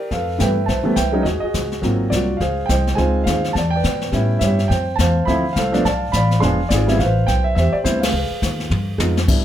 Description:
jazz piano trio; 209 BPM; 4/4; swing 61% on 8ths; A4 = 440 Hz
dark concert grand piano; melody; 0.0-9.4 s; E3 to C6; -20 LUFS; right 1 dB; plate reverb
upright bass; bass; 0.1-9.4 s; E1 to B2; -20 LUFS; equal
jazz brush drum kit; drums; 0.1-9.4 s; brushed snare drum, crash cymbal, hi-hat, kick drum, ride cymbal, snare drum, toms; -24 LUFS; left 2 dB
light reverb; -16 LUFS; side -11 dB against mid
0.1-9.3 A section
band accent 8.0; drum fill 8.7-9.3
0.1 Fmaj9#11; 1.3 Ebm7; 1.8 Ab13; 2.4 Dbmaj9; 3.5 Em7; 4.1 A7; 4.7 Dm7; 5.8 Bm7b5; 6.4 E7b9; 7.0 Am9; 8.1 Db9
| 0.10 0.39 0.68 0.96 | 1.25 1.54 1.82 2.11 | 2.40 2.69 2.97 3.26 | 3.55 3.83 4.12 4.41 | 4.69 4.98 5.27 5.55 | 5.84 6.13 6.42 6.70 | 6.99 7.28 7.56 7.85 | 8.14 8.42 8.71 9.00 | 9.28

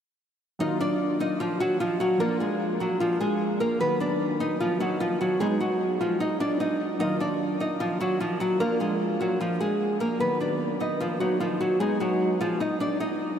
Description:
hip hop; 150 BPM; 4/4; half-time; Eb harmonic minor; A4 = 439 Hz
nylon-string guitar; melody; 0.6-13.4 s; F3 to Eb5; -25 LUFS; equal; diffuse ambient delay
warbly lo-fi synth keys; accompaniment; 0.6-13.4 s; Eb3 to F4; -29 LUFS; equal; chorus
wet huge ambient reverb, RT60 5.1 s; dreamy mix soaked in reverb; -24 LUFS; side -8 dB against mid
0.6-13.4 A section
0.6 Ebmadd9; 2.2 Bb; 3.8 Bmaj7; 5.4 Abm7; 7.0 Ebmadd9; 8.6 Bb; 10.2 Bmaj7; 11.8 Abm7
| 0.60 1.00 1.40 1.80 | 2.20 2.60 3.00 3.40 | 3.80 4.20 4.60 5.00 | 5.40 5.80 6.20 6.60 | 7.00 7.40 7.80 8.20 | 8.60 9.00 9.40 9.80 | 10.20 10.60 11.00 11.40 | 11.80 12.20 12.60 13.00

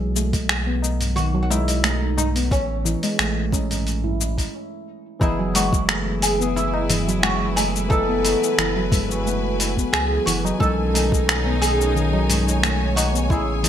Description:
organic downtempo; 89 BPM; 4/4; swing 53% on 16ths; F# dorian; A4 = 441 Hz
oud; melody; 0.0-13.7 s; C#4 to A4; -26 LUFS; equal; ping-pong delay
warm sub bass; bass; 0.0-13.7 s; F#1 to C#2; -24 LUFS; equal; sidechain pumping
handpan; arpeggios; 0.2-13.7 s; D#3 to E4; -25 LUFS; right 1 dB; ping-pong delay
dusty soul sampler-style drum kit; drums; 0.2-13.7 s; finger snaps, hi-hat, shaker; -23 LUFS; left 1 dB; overdrive, gated reverb
electronic kick drum; drums; 0.3-13.4 s; -21 LUFS; equal
tabla; percussion; 0.3-13.7 s; -32 LUFS; left 3 dB
barky tine electric piano; accompaniment; 5.2-13.7 s; C#3 to A4; -28 LUFS; left 2 dB; lush chorus, sidechain pumping, ping-pong delay
clear symphonic string section; sustained chords; 5.2-13.7 s; B2 to G#5; -30 LUFS; left 1 dB; sidechain pumping
moderate plate reverb, RT60 1.5 s, studio ambience; bright 1980s-style digital production; -18 LUFS; side -10 dB against mid
0.0-5.2 A section; 5.2-13.7 B section
stop 4.5-5.2
0.0 B5; 2.5 A; 5.2 F#m11; 10.6 B13
0.49 1.17 1.84 | 2.52 3.19 3.86 4.54 | 5.21 5.89 6.56 7.24 | 7.91 8.58 9.26 9.93 | 10.61 11.28 11.95 12.63 | 13.30

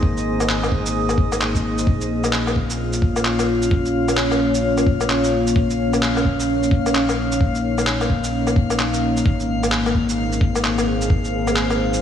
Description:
future garage; 130 BPM; 4/4; swing 62% on 16ths; Bb minor; A4 = 441 Hz
deep dark ambient pad; sustained chords; 0.0-12.0 s; Bb3 to Db5; -20 LUFS; equal; chorus, built-in reverb, vintage 12-bit sampler grit, sidechain pumping
warm sub bass; bass; 0.0-12.0 s; Ab1 to Bb1; -25 LUFS; left 1 dB; sidechain pumping
electronic kick drum; drums; 0.0-11.2 s; -19 LUFS; equal; overdrive
drifting glass-harmonics texture; texture; 0.0-12.0 s; Eb5 to F5; -30 LUFS; left 3 dB; chorus, built-in reverb
electronic shaker, woodblock and handclaps; drums; 0.2-12.0 s; -24 LUFS; left 1 dB; overdrive
wet lush hall reverb, RT60 2.0 s; dreamy mix soaked in reverb; -17 LUFS; side -9 dB against mid
0.0-12.0 A section
0.0 Abadd9; 1.9 Bbm; 9.3 Abadd9
| 0.02 0.49 0.95 1.41 | 1.87 2.33 2.79 3.25 | 3.72 4.18 4.64 5.10 | 5.56 6.02 6.49 6.95 | 7.41 7.87 8.33 8.79 | 9.26 9.72 10.18 10.64 | 11.10 11.56

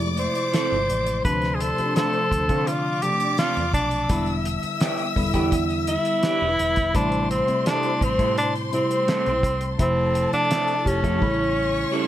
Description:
lush 1970s-style soul; 84 BPM; 4/4; straight; D dorian; A4 = 439 Hz
warm studio string section; second line; 0.0-12.1 s; A4 to E6; -30 LUFS; left 4 dB
tine electric piano; accompaniment; 0.0-12.1 s; C3 to E5; -26 LUFS; equal; phaser
vintage muted fingered electric bass; bass; 0.0-11.8 s; E1 to D3; -29 LUFS; equal
cloth-damped thuddy drum kit; drums; 0.0-11.4 s; hi-hat, kick drum, snare drum; -25 LUFS; equal
breathy tenor saxophone; melody; 0.2-12.1 s; C4 to C5; -23 LUFS; equal
electric guitar through a small old amp; riff; 0.5-12.1 s; E3 to A4; -30 LUFS; right 6 dB; phaser
light reverb; -20 LUFS; side -12 dB against mid
0.0-12.1 A section
drum fill 11.2-12.1
0.0 Fmaj7; 1.2 Dm7; 4.1 Em7; 6.9 Am7; 9.8 Fmaj7; 11.2 A7
0.54 | 1.25 1.96 2.68 3.39 | 4.10 4.81 5.53 6.24 | 6.95 7.66 8.37 9.08 | 9.79 10.51 11.22 11.93

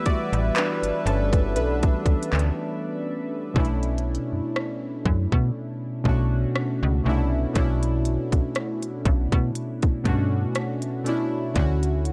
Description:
contemporary R&B; 60 BPM; 4/4; swing 54% on 16ths; B minor; A4 = 440 Hz
warm analog keys; accompaniment; 0.0-12.1 s; B2 to E5; -28 LUFS; equal; chorus, phaser
hollow soft pad; sustained chords; 0.0-3.5 s; G3 to B4; -34 LUFS; equal; chorus
trap drum kit; drums; 0.1-12.1 s; handclaps, hi-hat, kick drum, rim click; -26 LUFS; equal; vintage 12-bit sampler grit
slap-like FM bass; bass; 0.3-12.1 s; G1 to B2; -26 LUFS; equal
little or no reverb; -24 LUFS; mono
0.0-3.6 A section; 3.6-12.1 B section
synth keys solo 0.0-3.6; break 2.6-3.6
0.0 G6; 3.6 Bm11; 11.6 Dmaj9
0.56 1.56 2.56 | 3.56 4.56 5.56 6.56 | 7.56 8.56 9.56 10.56 | 11.56

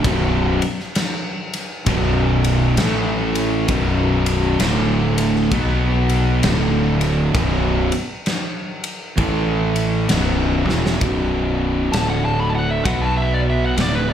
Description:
stoner and doom metal; 66 BPM; 4/4; swing 63% on 8ths; B minor; A4 = 440 Hz
fuzz guitar; riff; 0.0-14.1 s; B1 to B3; -20 LUFS; right 1 dB; distortion
sludgy distorted guitar; riff; 0.0-11.0 s; B1 to B3; -23 LUFS; equal; overdrive
fuzz fingered electric bass; bass; 0.0-14.1 s; B0 to B1; -21 LUFS; equal; overdrive
big rock drum kit; drums; 0.0-14.0 s; kick drum, ride cymbal, snare drum; -24 LUFS; left 1 dB
fuzz lead guitar; melody; 11.9-14.1 s; B4 to B5; -22 LUFS; equal; wah, distortion, slapback echo
light reverb; live gig heard through the venue's PA, club reverb; -16 LUFS; side -9 dB against mid
0.0-11.0 A section; 11.0-14.1 B section
drum fill 10.6-11.0; lead electric guitar solo 11.0-14.1
0.0 B5; 2.8 A5; 3.7 B5; 4.6 D5; 5.5 B5; 6.4 D5; 7.3 B5; 9.2 A5; 10.1 B5; 11.9 D5; 12.8 B5
| 0.05 0.96 1.87 2.78 | 3.69 4.61 5.52 6.43 | 7.35 8.26 9.18 10.10 | 11.01 11.93 12.85 13.77

